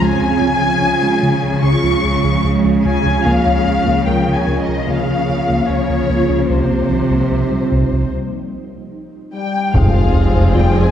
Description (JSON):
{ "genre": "cinematic, hybrid orchestral and electronic film score", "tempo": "74 BPM", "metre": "4/4", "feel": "straight", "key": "C phrygian", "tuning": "A4 = 441 Hz", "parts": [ { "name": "dark symphonic violin section", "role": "melody", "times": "0.0-10.9 s", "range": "C5 to Db6", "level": "-20 LUFS", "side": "left 4 dB", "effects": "none" }, { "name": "ethereal airy pad", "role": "sustained chords", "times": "0.0-10.9 s", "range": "F3 to Db5", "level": "-19 LUFS", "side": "right 1 dB", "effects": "ensemble chorus, built-in reverb, phaser" }, { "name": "harp-like synth pluck", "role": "arpeggios", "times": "0.0-10.9 s", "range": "C3 to Bb4", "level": "-22 LUFS", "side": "equal", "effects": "chorus, digital delay" }, { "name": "smooth synth bass", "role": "riff", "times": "0.0-10.9 s", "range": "C2 to F3", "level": "-20 LUFS", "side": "equal", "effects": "none" }, { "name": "warm studio cello section", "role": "bass", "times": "0.0-10.9 s", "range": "F2 to Db3", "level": "-21 LUFS", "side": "right 2 dB", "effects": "none" }, { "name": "warm French horn section", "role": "sustained chords", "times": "9.3-10.9 s", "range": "F3 to Ab3", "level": "-23 LUFS", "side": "left 5 dB", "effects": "none" }, { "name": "warm symphonic violin section", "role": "second line", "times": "9.7-10.9 s", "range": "F4 to Ab4", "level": "-24 LUFS", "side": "left 4 dB", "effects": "none" }, { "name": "warm symphonic viola section", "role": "accompaniment", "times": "9.7-10.9 s", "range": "F3 to C4", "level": "-23 LUFS", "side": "right 1 dB", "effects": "none" }, { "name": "bright trombone section", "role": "sustained chords", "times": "9.7-10.0 s", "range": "F3 to Ab3", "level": "-26 LUFS", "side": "right 1 dB", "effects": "none" }, { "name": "mellow tuba", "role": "bass", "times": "9.7-10.9 s", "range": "F1", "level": "-22 LUFS", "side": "equal", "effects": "none" }, { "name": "pure sine sub bass", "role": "bass", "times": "9.7-10.9 s", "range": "F1", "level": "-20 LUFS", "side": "equal", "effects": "none" }, { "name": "warm symphonic double bass section", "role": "bass", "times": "9.7-10.9 s", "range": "F1", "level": "-21 LUFS", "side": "right 1 dB", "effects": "none" }, { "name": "taiko ensemble", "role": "drums", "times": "9.7-10.5 s", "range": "none", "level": "-18 LUFS", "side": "equal", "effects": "none" }, { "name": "sub drop", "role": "sound effects", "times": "9.9-10.9 s", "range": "none", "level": "-21 LUFS", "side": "left 1 dB", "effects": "none" } ], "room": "wet scoring stage reverb, RT60 1.7 s", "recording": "heard from further back in the room", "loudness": "-13 LUFS", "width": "side -9 dB against mid", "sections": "0.0-9.7 A section; 9.7-10.9 A section", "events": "break 8.1-9.7; impact 9.7-10.9", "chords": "0.0 Db; 3.3 Bbm/Db; 6.5 Cm; 9.7 Fm", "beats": "| 0.02 0.83 1.64 2.45 | 3.26 4.07 4.88 5.69 | 6.50 7.32 8.13 8.94 | 9.75 10.56" }